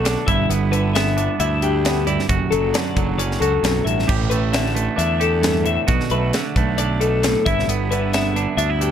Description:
math rock and midwest emo; 134 BPM; 4/4; straight; A4 = 440 Hz
twangy electric guitar; accompaniment; 0.0-8.9 s; F#2 to G4; -23 LUFS; right 8 dB
twelve-string electric guitar; arpeggios; 0.0-8.9 s; G4 to E5; -22 LUFS; left 7 dB; lush chorus, digital delay
fuzz fingered electric bass; bass; 0.0-8.9 s; F#1 to E2; -22 LUFS; equal; overdrive
crisp fusion drum kit; drums; 0.1-8.9 s; crash cymbal, hi-hat, kick drum, snare drum; -23 LUFS; equal
little or no reverb; -17 LUFS; side -9 dB against mid
0.0-8.9 A section
0.3 G6; 2.3 Dmaj7/F#; 4.1 A7sus4; 5.9 Bm7; 7.5 G6

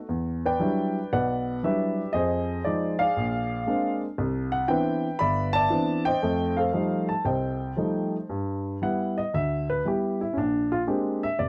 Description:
solo jazz; 117 BPM; 4/4; swing 69% on 8ths, rubato; A4 = 441 Hz
warm upright piano; solo; 0.0-11.5 s; F1 to B5; -26 LUFS; equal
light reverb; close, detailed microphones; -26 LUFS; mono
0.0-8.3 A section; 8.3-11.5 B section
upright piano solo 8.3-11.5
0.1 Em9; 2.1 Fm7; 3.2 Bb9; 4.2 Cmaj9; 6.2 F9; 8.3 G6; 10.4 Bb13

